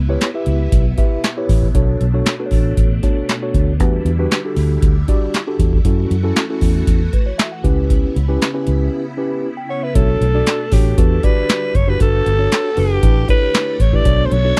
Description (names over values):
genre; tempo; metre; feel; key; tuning
early-eighties boogie funk; 117 BPM; 4/4; straight; B minor; A4 = 440 Hz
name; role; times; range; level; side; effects
phased string machine; sustained chords; 0.0-14.6 s; B2 to A4; -31 LUFS; equal; ensemble chorus, phaser
vintage muted fingered electric bass; bass; 0.0-14.5 s; F#1 to F#2; -19 LUFS; equal; none
mellow tine electric piano; accompaniment; 0.1-14.6 s; C#4 to G5; -24 LUFS; equal; none
booming analog drum machine; drums; 0.2-14.6 s; handclaps, hi-hat, kick drum, snare drum; -18 LUFS; equal; none
growling alto saxophone; melody; 9.7-14.6 s; G4 to D5; -21 LUFS; equal; tape echo
room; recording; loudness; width
little or no reverb; dry, close 1970s-style studio recording; -16 LUFS; mono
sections
0.0-10.0 A section; 10.0-14.6 B section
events
break 8.9-10.0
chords
0.0 C#m7b5; 1.7 Bm9; 3.8 Em7; 5.8 F#m7; 7.6 C#m7b5; 10.0 Bm7; 11.0 Em7; 12.0 Gmaj7; 13.0 A7sus4; 14.1 Bm7